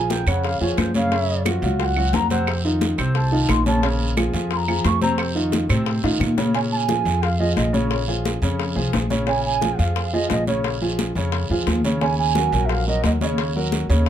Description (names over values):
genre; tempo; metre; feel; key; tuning
Afro-Cuban jazz; 176 BPM; 4/4; straight; Bb minor; A4 = 440 Hz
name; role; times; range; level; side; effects
bansuri; melody; 0.0-13.5 s; C5 to Db6; -25 LUFS; right 3 dB; plate reverb, tape echo
warm baby grand piano; accompaniment; 0.0-14.1 s; C3 to Db5; -24 LUFS; equal; none
upright bass; bass; 0.0-14.1 s; Bb1 to Bb2; -22 LUFS; equal; none
bongos; percussion; 0.1-14.1 s; none; -30 LUFS; left 7 dB; none
congas; percussion; 0.1-14.1 s; none; -26 LUFS; left 2 dB; none
guiro; percussion; 0.1-14.1 s; none; -33 LUFS; right 5 dB; none
claves; percussion; 0.3-6.4 s; none; -28 LUFS; right 6 dB; none
room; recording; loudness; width
light reverb; none; -18 LUFS; side -10 dB against mid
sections
0.0-6.5 A section; 6.5-14.1 B section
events
bansuri solo 0.0-6.5; drum fill 6.0-6.5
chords
0.0 Bbm7; 1.1 Gb5; 2.5 F7; 3.8 Bbm7; 5.2 F7; 6.5 Bbm7; 12.0 Ebm7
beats
0.10 0.44 0.78 | 1.12 1.46 1.80 2.13 | 2.47 2.81 3.15 3.49 | 3.83 4.17 4.51 4.85 | 5.19 5.53 5.87 6.21 | 6.55 6.89 7.23 7.57 | 7.91 8.25 8.59 8.93 | 9.28 9.62 9.96 10.30 | 10.64 10.98 11.33 11.67 | 12.01 12.35 12.70 13.04 | 13.38 13.72 14.07